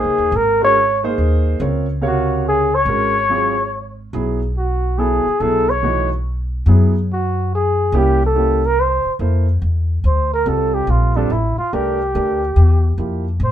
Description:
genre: modal jazz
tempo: 142 BPM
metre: 3/4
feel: swing 65% on 8ths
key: Ab mixolydian, F major from 9.2 s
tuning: A4 = 440 Hz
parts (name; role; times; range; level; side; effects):
- trumpet with bucket mute; melody; 0.0-13.5 s; D4 to Db5; -17 LUFS; equal; none
- warm grand piano; accompaniment; 0.0-13.2 s; C3 to F5; -22 LUFS; right 3 dB; none
- upright bass; bass; 0.0-13.5 s; Ab1 to A2; -18 LUFS; equal; none
room: moderate studio reverb, RT60 0.7 s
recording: minimal, uncompressed stereo recording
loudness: -15 LUFS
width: side -10 dB against mid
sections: 0.0-9.2 A section; 9.2-13.5 B section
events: muted trumpet solo 9.2-13.5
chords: 0.0 Ab9sus4; 4.1 B7sus4; 7.9 C7b9; 9.2 Fmaj9

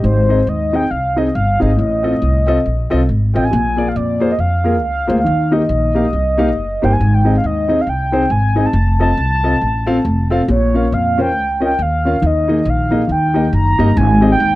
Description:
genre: uptempo gospel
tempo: 138 BPM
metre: 4/4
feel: swing 62% on 8ths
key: Ab major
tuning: A4 = 441 Hz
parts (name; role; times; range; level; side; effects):
- mellow horn-like synth lead; melody; 0.0-14.6 s; C5 to Bb5; -18 LUFS; right 1 dB; chorus
- warm concert grand piano; accompaniment; 0.0-14.6 s; Ab2 to F5; -17 LUFS; left 1 dB; none
- upright bass; bass; 0.0-14.6 s; F1 to F2; -16 LUFS; equal; none
room: little or no reverb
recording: dry, close 1970s-style studio recording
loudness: -13 LUFS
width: side -17 dB against mid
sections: 0.0-14.0 A section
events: none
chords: 0.0 Ab; 1.8 F7/A; 3.5 Bb7; 5.3 Eb; 7.0 Ab; 8.7 F; 10.5 Bbm; 12.2 Ebsus4; 13.1 Eb; 14.0 Abmaj7

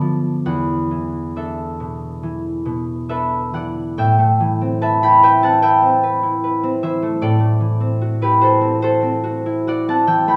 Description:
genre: classical, solo harp piece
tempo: 67-77 BPM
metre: 4/4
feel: rubato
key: A dorian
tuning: A4 = 440 Hz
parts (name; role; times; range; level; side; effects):
- concert harp; solo; 0.0-10.4 s; E2 to B5; -18 LUFS; equal; none
room: wet recital hall reverb, RT60 1.3 s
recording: none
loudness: -18 LUFS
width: mono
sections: 0.0-4.0 A section; 4.0-10.4 B section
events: none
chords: 0.5 E7sus4; 4.0 Am9; 7.2 D9/A

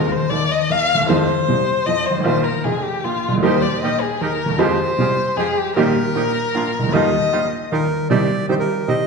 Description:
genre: tango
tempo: 154 BPM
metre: 3/4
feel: rubato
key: Eb major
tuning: A4 = 440 Hz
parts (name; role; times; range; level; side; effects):
- warm violin; second line; 0.0-7.7 s; F4 to F5; -20 LUFS; left 4 dB; none
- bright upright piano; accompaniment; 0.0-9.0 s; F1 to G4; -19 LUFS; right 1 dB; none
- bandoneon; stabs; 3.4-9.0 s; G3 to G4; -26 LUFS; right 3 dB; none
- bandoneon; melody; 7.7-9.1 s; Bb4 to Eb5; -22 LUFS; right 4 dB; none
room: wet scoring stage reverb, RT60 1.4 s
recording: studio ambience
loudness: -16 LUFS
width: side -4 dB against mid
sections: 0.0-8.1 A section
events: violin solo 0.0-8.1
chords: 0.0 Ab5/Eb (rootless); 1.1 Fm7; 2.3 Bbsus4; 3.0 Bb; 3.4 Eb; 4.6 Fmadd9; 5.8 Eb/Bb; 6.5 Bb; 6.9 Ebadd9; 8.1 Cm

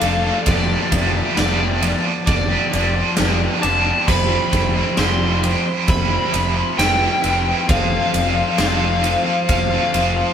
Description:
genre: post-rock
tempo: 67 BPM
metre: 4/4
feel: straight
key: unclear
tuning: A4 = 440 Hz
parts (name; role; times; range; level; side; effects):
- overdriven slide guitar; melody; 0.0-10.3 s; D5 to C6; -22 LUFS; left 2 dB; none
- twelve-string electric guitar; arpeggios; 0.0-10.3 s; F3 to F4; -26 LUFS; left 1 dB; tremolo
- vibraphone with hard mallets; arpeggios; 0.0-10.3 s; A4 to C6; -30 LUFS; right 7 dB; none
- overdriven electric guitar; riff; 0.0-10.3 s; F3 to A4; -25 LUFS; left 5 dB; none
- overdriven electric guitar; riff; 0.0-10.3 s; F3 to A4; -23 LUFS; right 5 dB; harmonic tremolo
- fuzz fingered electric bass; bass; 0.0-10.2 s; F1; -22 LUFS; equal; overdrive
- huge arena drum kit; drums; 0.0-10.1 s; crash cymbal, kick drum, ride cymbal, snare drum; -22 LUFS; equal; none
room: moderate studio reverb, RT60 0.8 s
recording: band playing live in one room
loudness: -15 LUFS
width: side -8 dB against mid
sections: 0.0-10.3 A section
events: none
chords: 0.5 G/F; 7.7 F

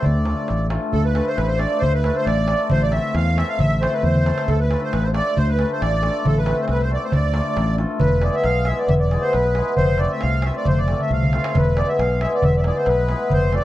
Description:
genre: balkan folk, Balkan wedding band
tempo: 136 BPM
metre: 2/4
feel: swing 54% on 16ths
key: D dorian sharp4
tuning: A4 = 438 Hz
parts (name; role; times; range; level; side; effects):
- accordion; melody; 0.0-13.6 s; A4 to F5; -24 LUFS; equal; light tremolo tuning, plate reverb
- darbuka; percussion; 0.0-13.6 s; none; -24 LUFS; equal; none
- modern bright fingered electric bass; bass; 0.1-13.6 s; E1 to E2; -20 LUFS; equal; none
- cimbalom; accompaniment; 0.2-13.6 s; G#3 to A4; -24 LUFS; left 2 dB; none
- musette accordion; second line; 0.9-7.8 s; A4 to F5; -28 LUFS; right 6 dB; none
room: moderate studio reverb, RT60 0.6 s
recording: dark, warm production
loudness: -17 LUFS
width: side -15 dB against mid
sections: 0.9-8.0 A section; 8.0-13.6 B section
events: drum fill 4.0-4.5, 11.0-11.5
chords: 0.1 Dm; 2.7 Am; 4.5 Dm; 6.3 Am; 7.1 Dm; 8.0 E; 9.8 F; 11.5 E

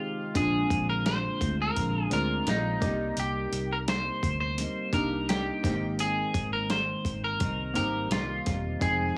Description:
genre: indie pop, bedroom pop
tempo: 85 BPM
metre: 4/4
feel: straight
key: unclear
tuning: A4 = 440 Hz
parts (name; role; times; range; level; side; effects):
- clean electric guitar; melody; 0.0-9.2 s; Eb4 to C5; -33 LUFS; equal; lush chorus, tape echo
- chorused retro synth keys; accompaniment; 0.0-9.2 s; G3 to G5; -37 LUFS; equal; none
- clean electric guitar; accompaniment; 0.0-9.2 s; F2 to F4; -37 LUFS; equal; subtle chorus, warbly pitch drift
- vintage muted fingered electric bass; bass; 0.4-9.1 s; E1 to D2; -36 LUFS; equal; none
- dusty soul sampler-style drum kit; drums; 0.4-9.0 s; hi-hat, kick drum, snare drum; -34 LUFS; equal; overdrive
room: light reverb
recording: small room ambience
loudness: -29 LUFS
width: mono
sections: 0.4-9.2 A section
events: break 0.0-0.4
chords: 0.4 Bb9; 2.8 Cm7; 5.6 Abmaj7

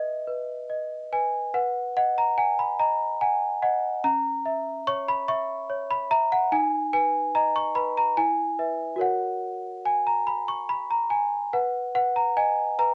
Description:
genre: classical, lullaby for celesta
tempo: 72 BPM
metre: 3/4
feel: straight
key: B major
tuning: A4 = 439 Hz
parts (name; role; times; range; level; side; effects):
- worn celesta; solo; 0.0-12.9 s; C#4 to C#6; -22 LUFS; equal; none
room: moderate booth ambience, RT60 0.2 s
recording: cassette tape, nothing above 10.3 kHz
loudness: -22 LUFS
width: side -25 dB against mid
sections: 0.0-1.5 A section; 1.5-12.9 A section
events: none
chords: 0.0 B; 4.0 C#m6; 6.5 B/D#; 8.2 E; 9.0 F#; 11.5 B

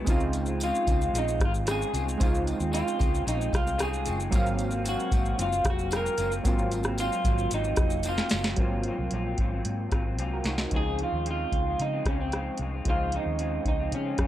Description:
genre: indie pop, bedroom pop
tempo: 113 BPM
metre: 4/4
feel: straight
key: Db major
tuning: A4 = 440 Hz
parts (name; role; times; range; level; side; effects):
- electric guitar through a small old amp; accompaniment; 0.0-14.3 s; Ab2 to F4; -35 LUFS; left 4 dB; lush chorus, vibrato effect
- warm analog keys; accompaniment; 0.0-14.3 s; F3 to F5; -33 LUFS; right 2 dB; chorus
- vintage muted fingered electric bass; bass; 0.1-14.3 s; F1 to Db3; -32 LUFS; equal; none
- soft vintage rhythm box; drums; 0.1-14.3 s; hi-hat, kick drum, rim click, shaker, snare drum; -28 LUFS; equal; none
- tambourine; percussion; 0.1-8.4 s; none; -46 LUFS; right 2 dB; none
- electric guitar through a small old amp; melody; 0.6-14.3 s; C4 to Bb4; -31 LUFS; right 1 dB; wide subtle chorus, tape echo
room: digital ambience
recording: dry, gritty hardware recording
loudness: -25 LUFS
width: side -12 dB against mid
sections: 0.0-8.6 A section; 8.6-10.7 B section; 10.7-14.3 C section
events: drum fill 8.1-8.6, 10.2-10.7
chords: 0.1 Dbmaj7; 4.3 Ab13; 10.7 Dbmaj7

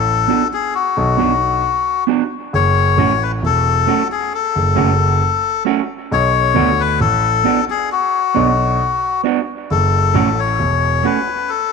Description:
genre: roots reggae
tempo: 67 BPM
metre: 4/4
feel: straight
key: B dorian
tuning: A4 = 442 Hz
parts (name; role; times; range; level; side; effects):
- melodica; melody; 0.0-11.7 s; F#4 to C#5; -16 LUFS; left 9 dB; dub echo
- dark concert grand piano; bass; 0.0-11.0 s; E1 to D2; -17 LUFS; right 1 dB; none
- mellow electric guitar; accompaniment; 0.3-11.3 s; A3 to F#4; -20 LUFS; right 13 dB; dub echo
room: light reverb, small room ambience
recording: 1960s-style stereo with parts hard left and right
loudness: -14 LUFS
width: side -5 dB against mid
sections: 0.0-11.7 A section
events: none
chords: 0.0 Bm; 2.5 F#m; 6.1 Bm; 9.7 F#m

